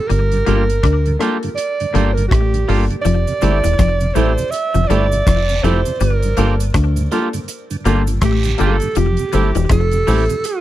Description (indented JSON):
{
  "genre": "lovers rock reggae",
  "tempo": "81 BPM",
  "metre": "4/4",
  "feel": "swing 60% on 16ths",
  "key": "unclear",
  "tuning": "A4 = 437 Hz",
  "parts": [
    { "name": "breathy alto saxophone", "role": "melody", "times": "0.0-10.6 s", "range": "F4 to E5", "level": "-21 LUFS", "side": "right 4 dB", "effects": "tape echo" },
    { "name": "twangy electric guitar", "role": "riff", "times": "0.1-10.2 s", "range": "E3 to D4", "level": "-24 LUFS", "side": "left 10 dB", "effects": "ensemble chorus, slapback echo" },
    { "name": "deep dub fingered electric bass", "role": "bass", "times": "0.1-10.3 s", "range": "E1 to D2", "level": "-16 LUFS", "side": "equal", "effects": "none" },
    { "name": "damped 70s drum kit", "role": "drums", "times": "0.1-10.6 s", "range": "hi-hat, kick drum, rim click", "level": "-21 LUFS", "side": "equal", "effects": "none" },
    { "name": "tonewheel organ", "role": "accompaniment", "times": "0.3-10.4 s", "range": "F2 to F4", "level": "-25 LUFS", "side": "right 3 dB", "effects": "chorus vibrato, slow rotary speaker, slapback echo" },
    { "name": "warm concert grand piano", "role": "accompaniment", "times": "0.5-10.4 s", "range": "Bb3 to A4", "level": "-24 LUFS", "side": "left 5 dB", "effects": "slapback echo" },
    { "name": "twangy electric guitar", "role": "stabs", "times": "0.5-10.2 s", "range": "A3 to G4", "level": "-24 LUFS", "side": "right 5 dB", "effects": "none" },
    { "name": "cabasa and guiro", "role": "percussion", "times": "3.0-10.6 s", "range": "none", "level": "-33 LUFS", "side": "right 7 dB", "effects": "slapback echo" }
  ],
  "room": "small room ambience",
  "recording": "dry, close 1970s-style studio recording",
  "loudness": "-14 LUFS",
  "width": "side -14 dB against mid",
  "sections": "0.0-10.6 A section",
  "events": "none",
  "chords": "0.1 Gm7; 3.0 Fmaj9; 6.0 Gm7; 9.0 Fmaj9"
}